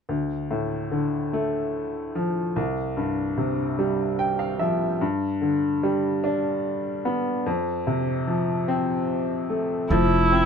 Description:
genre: acoustic folk-pop ballad.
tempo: 49 BPM (dotted quarters).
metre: 6/8.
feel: straight.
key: F major.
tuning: A4 = 438 Hz.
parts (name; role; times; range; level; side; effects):
bright upright piano; melody; 0.1-10.5 s; C2 to G5; -23 LUFS; left 1 dB; none.
warm viola; second line; 9.9-10.5 s; E4; -20 LUFS; right 1 dB; none.
upright bass; bass; 9.9-10.5 s; F1; -21 LUFS; right 1 dB; none.
room: light reverb.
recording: band playing live in one room.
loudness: -22 LUFS.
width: side -6 dB against mid.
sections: 0.1-9.9 A section.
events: upright piano fill 3.8-5.0.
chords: 0.1 D5; 2.6 Csus4; 5.0 G5; 7.5 F5; 9.9 Fmaj7(no3).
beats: | 0.09 1.32 | 2.55 3.78 | 5.01 6.23 | 7.46 8.68 | 9.91.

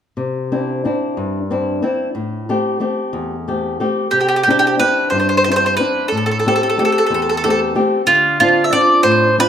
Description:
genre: italian folk, Italian serenade.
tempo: 61 BPM (dotted quarters).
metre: 6/8.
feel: rubato.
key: C major.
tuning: A4 = 438 Hz.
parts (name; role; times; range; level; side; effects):
flamenco guitar; accompaniment; 0.2-9.5 s; E2 to G4; -17 LUFS; left 2 dB; none.
mandolin; melody; 4.1-9.5 s; F4 to E5; -14 LUFS; right 1 dB; slapback echo.
room: moderate recital hall reverb, RT60 1.8 s.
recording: none.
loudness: -14 LUFS.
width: side -9 dB against mid.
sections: 0.2-4.1 A section; 4.1-9.5 B section.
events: none.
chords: 0.2 Cadd9; 2.2 Am7; 4.1 Cadd9; 6.1 Am7; 8.1 Dm7.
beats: | 0.17 1.17 | 2.15 3.14 | 4.13 5.12 | 6.12 7.10 | 8.07 9.04.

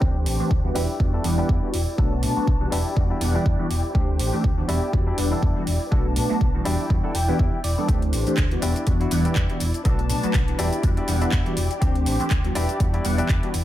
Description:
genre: filtered disco house.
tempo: 122 BPM.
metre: 4/4.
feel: swing 56% on 16ths.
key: E minor.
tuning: A4 = 440 Hz.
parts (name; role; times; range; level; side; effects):
funky polysynth comp; accompaniment; 0.0-13.5 s; E3 to F#5; -26 LUFS; equal; chorus, phaser, vintage 12-bit sampler grit, sidechain pumping, low-pass filter.
warm studio string section; sustained chords; 0.0-13.6 s; D4 to A5; -30 LUFS; left 1 dB; sidechain pumping, low-pass filter.
direct-recorded clean electric guitar; riff; 0.0-13.5 s; B3 to G5; -31 LUFS; left 2 dB; sidechain pumping, low-pass filter.
fingered electric bass; bass; 0.0-13.6 s; E1 to B2; -24 LUFS; equal; sidechain pumping, low-pass filter.
electronic kick drum; drums; 0.0-13.4 s; none; -22 LUFS; equal; none.
house drum kit; drums; 0.3-13.6 s; handclaps, hi-hat, shaker; -32 LUFS; right 1 dB; sidechain pumping on hats, sidechain pumping on perc.
room: moderate plate reverb, RT60 1.1 s.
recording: dreamy mix soaked in reverb.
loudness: -20 LUFS.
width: side -13 dB against mid.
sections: 0.0-13.6 A section.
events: filter sweep 0.0-13.6; clean electric guitar fill 6.9-7.9.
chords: 0.0 D7sus4; 0.8 Em7; 2.0 Bm7; 2.7 Em7; 4.0 D7sus4; 4.7 Em7; 5.9 Bm7; 6.7 Em7; 7.9 D7sus4; 8.6 Em7; 9.9 Bm7; 10.6 Em7; 11.8 D7sus4; 12.6 Em7.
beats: | 0.02 0.51 1.00 1.49 | 1.98 2.48 2.97 3.46 | 3.95 4.44 4.93 5.43 | 5.92 6.41 6.90 7.39 | 7.88 8.38 8.87 9.36 | 9.85 10.34 10.84 11.33 | 11.82 12.31 12.80 13.29.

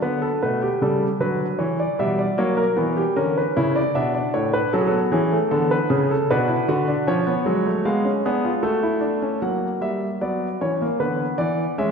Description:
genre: classical, baroque-style 3-part fugue for grand piano.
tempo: 76 BPM.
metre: 3/4.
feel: straight.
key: B minor.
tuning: A4 = 440 Hz.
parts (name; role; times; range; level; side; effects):
warm concert grand piano; solo; 0.0-11.9 s; A2 to F#5; -19 LUFS; equal; none.
room: wet concert hall reverb, RT60 2.4 s.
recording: recorded in a church or concert hall.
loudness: -19 LUFS.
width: side -6 dB against mid.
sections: 0.0-9.4 A section; 9.4-11.9 B section.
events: none.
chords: 0.0 Bm; 1.6 Em; 2.4 F#7; 3.9 Bm; 4.7 F#m; 6.3 Bm; 7.1 C#7/E#; 8.6 F#m/A; 9.4 F#7; 11.0 Bm/D.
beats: | 0.01 0.81 1.60 | 2.38 3.17 3.95 | 4.72 5.50 6.28 | 7.06 7.85 8.63 | 9.43 10.22 11.01 | 11.80.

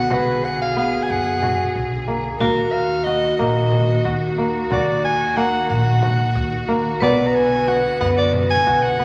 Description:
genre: contemporary instrumental, chamber music in an uneven meter.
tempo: 182 BPM (eighths).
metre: 7/8.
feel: straight.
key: Eb harmonic minor.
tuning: A4 = 438 Hz.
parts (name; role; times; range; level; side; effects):
clear soprano saxophone; melody; 0.0-9.0 s; Bb4 to Bb5; -24 LUFS; equal; none.
vibraphone with hard mallets; second line; 0.0-9.0 s; F#4 to B4; -26 LUFS; equal; none.
rich studio string section; sustained chords; 0.0-9.0 s; B2 to Ab4; -30 LUFS; equal; none.
kora; arpeggios; 0.0-9.0 s; Bb3 to F#4; -26 LUFS; equal; none.
upright bass; bass; 0.1-9.0 s; Bb1 to F#2; -26 LUFS; equal; none.
frame drum; percussion; 0.1-8.6 s; none; -32 LUFS; equal; none.
room: wet recital hall reverb, RT60 1.7 s.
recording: none.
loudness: -19 LUFS.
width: mono.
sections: 0.0-9.0 A section.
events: none.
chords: 0.0 Bm; 2.4 Ebm; 7.0 Bm.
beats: | 0.10 0.43 0.76 1.09 1.42 1.75 2.08 | 2.41 2.73 3.06 3.39 3.72 4.05 4.38 | 4.71 5.04 5.37 5.70 6.03 6.35 6.68 | 7.01 7.34 7.67 8.00 8.33 8.66 8.99.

